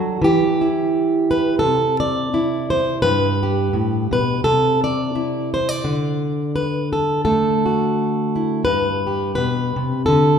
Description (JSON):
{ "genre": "folk, solo fingerstyle acoustic guitar", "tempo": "85 BPM", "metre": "4/4", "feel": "swing 55% on 8ths", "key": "G major", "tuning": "A4 = 440 Hz", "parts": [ { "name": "fingerpicked plugged-in steel-string acoustic guitar", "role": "solo", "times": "0.0-10.4 s", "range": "G2 to D5", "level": "-17 LUFS", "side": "equal", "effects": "none" } ], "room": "wet concert hall reverb, RT60 1.8 s", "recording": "recorded in a church or concert hall", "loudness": "-17 LUFS", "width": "side -7 dB against mid", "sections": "0.0-10.4 A section", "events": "none", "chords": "0.2 N.C.; 1.6 C; 3.0 G; 4.4 C; 5.8 D; 8.6 G" }